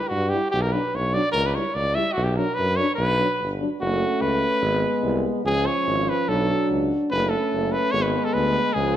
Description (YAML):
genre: balkan folk, Balkan brass band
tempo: 146 BPM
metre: 2/4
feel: straight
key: B harmonic minor, F# harmonic minor from 3.8 s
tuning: A4 = 439 Hz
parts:
  - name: warm cornet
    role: melody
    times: 0.0-9.0 s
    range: F#4 to E5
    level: -24 LUFS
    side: equal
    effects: none
  - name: clear tuba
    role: bass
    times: 0.1-9.0 s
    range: F#1 to G2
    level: -26 LUFS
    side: equal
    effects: none
  - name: dark French horn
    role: accompaniment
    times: 0.3-9.0 s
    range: G#3 to E4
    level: -28 LUFS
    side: left 4 dB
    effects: none
  - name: mellow trombone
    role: accompaniment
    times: 0.3-9.0 s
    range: E#3 to A3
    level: -29 LUFS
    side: right 6 dB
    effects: none
room: moderate recital hall reverb, RT60 1.6 s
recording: none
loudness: -20 LUFS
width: side -11 dB against mid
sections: 0.0-3.8 A section; 3.8-9.0 B section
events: none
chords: 0.0 C#dim (rootless); 0.5 Bm; 1.3 C#dim; 2.2 Bm; 3.8 F#m; 4.6 G#m; 5.4 C#; 6.3 Bm; 7.1 F#m; 7.9 G#dim